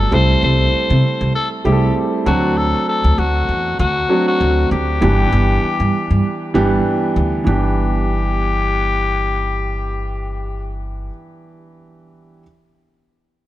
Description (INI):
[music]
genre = 1980s-style pop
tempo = 98 BPM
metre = 4/4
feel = swing 55% on 16ths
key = G major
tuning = A4 = 440 Hz
[part]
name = raspy tenor saxophone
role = melody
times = 0.0-10.7 s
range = F#4 to C5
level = -20 LUFS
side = left 4 dB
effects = digital delay
[part]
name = warm baby grand piano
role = accompaniment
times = 0.0-12.4 s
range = E3 to A4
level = -19 LUFS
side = right 2 dB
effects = none
[part]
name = upright bass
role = bass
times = 0.0-11.1 s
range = G1 to C3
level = -18 LUFS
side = equal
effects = none
[sound]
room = light reverb, small room ambience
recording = none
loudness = -14 LUFS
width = side -14 dB against mid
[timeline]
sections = 0.0-7.5 A section; 7.5-9.9 B section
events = none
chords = 0.1 Am7/C; 2.3 D7; 5.0 G6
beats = | 0.12 0.73 1.34 1.96 | 2.57 3.18 3.79 4.41 | 5.02 5.63 6.24 6.85 | 7.47 8.08 8.69 9.30